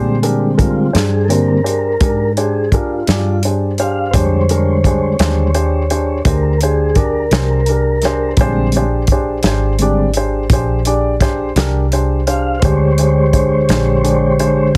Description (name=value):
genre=slow blues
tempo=56 BPM (dotted quarters)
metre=12/8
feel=straight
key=Bb mixolydian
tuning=A4 = 440 Hz
part: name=warm upright piano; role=accompaniment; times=0.0-14.7 s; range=D4 to D5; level=-21 LUFS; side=equal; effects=none
part: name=mellow tonewheel organ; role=sustained chords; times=0.0-14.8 s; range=D3 to F5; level=-19 LUFS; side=equal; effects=fast rotary speaker
part: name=vintage muted fingered electric bass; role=bass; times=0.0-14.8 s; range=Ab1 to Bb2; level=-20 LUFS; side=equal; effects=none
part: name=warm soul drum kit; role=drums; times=0.2-14.8 s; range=hi-hat, kick drum, snare drum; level=-19 LUFS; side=equal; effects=none
room=light reverb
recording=heavily compressed radio sound, multiband compression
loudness=-15 LUFS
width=mono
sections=0.0-14.8 A section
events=tonewheel organ solo 0.0-14.8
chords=0.0 Bb13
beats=0.95 2.01 3.07 | 4.13 5.19 6.26 7.32 | 8.38 9.44 10.51 11.57 | 12.63 13.69 14.75